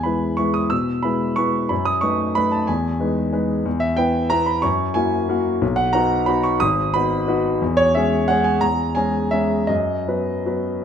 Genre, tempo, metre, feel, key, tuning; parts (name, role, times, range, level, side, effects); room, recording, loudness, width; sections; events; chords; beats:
classical, piano waltz; 156-193 BPM; 3/4; rubato; B major; A4 = 440 Hz
warm concert grand piano; solo; 0.0-10.8 s; G#1 to E6; -18 LUFS; equal
moderate recital hall reverb, RT60 1.5 s; close, detailed microphones; -18 LUFS; side -8 dB against mid
0.0-10.8 A section
0.0 E; 1.7 B7/F#; 2.7 Emaj7; 3.7 Em; 4.6 F#7; 5.6 B; 6.6 G#m7; 7.6 C#m/E; 9.7 B/F#
0.05 0.39 | 0.71 1.04 1.38 | 1.71 2.03 2.37 | 2.69 3.00 3.33 | 3.66 3.98 4.31 | 4.64 4.96 5.30 | 5.62 5.94 6.28 | 6.61 6.94 7.28 | 7.61 7.95 8.29 | 8.62 8.96 9.32 | 9.70 10.08 10.46 | 10.83